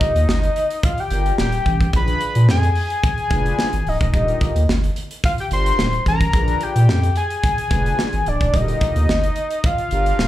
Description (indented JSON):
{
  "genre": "early-eighties boogie funk",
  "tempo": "109 BPM",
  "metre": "4/4",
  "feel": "straight",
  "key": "unclear",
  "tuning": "A4 = 440 Hz",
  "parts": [
    { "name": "fat analog lead", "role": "melody", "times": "0.0-10.3 s", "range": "D5 to C6", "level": "-22 LUFS", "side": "left 2 dB", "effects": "slapback echo" },
    { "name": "mellow synth brass", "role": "accompaniment", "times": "0.0-10.3 s", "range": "D3 to Cb5", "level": "-29 LUFS", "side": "left 1 dB", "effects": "chorus, slapback echo" },
    { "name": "modern studio drum kit", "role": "drums", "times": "0.0-10.3 s", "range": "hi-hat, kick drum, snare drum", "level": "-22 LUFS", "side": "equal", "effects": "none" },
    { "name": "saturated sub bass", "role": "bass", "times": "0.2-10.3 s", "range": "Db1 to Bb2", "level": "-18 LUFS", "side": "equal", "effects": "none" }
  ],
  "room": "little or no reverb",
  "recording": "live gig heard through the venue's PA, club reverb",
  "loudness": "-16 LUFS",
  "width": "side -14 dB against mid",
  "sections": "0.0-10.3 A section",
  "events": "none",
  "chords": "0.0 Ebmaj9; 1.9 Bb7b9; 4.1 Ebmaj9; 6.3 Bb7b9; 8.5 Ebmaj9",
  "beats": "0.28 0.83 1.38 | 1.93 2.48 3.04 3.58 | 4.14 4.69 5.24 5.79 | 6.34 6.89 7.44 7.99 | 8.54 9.09 9.64 10.19"
}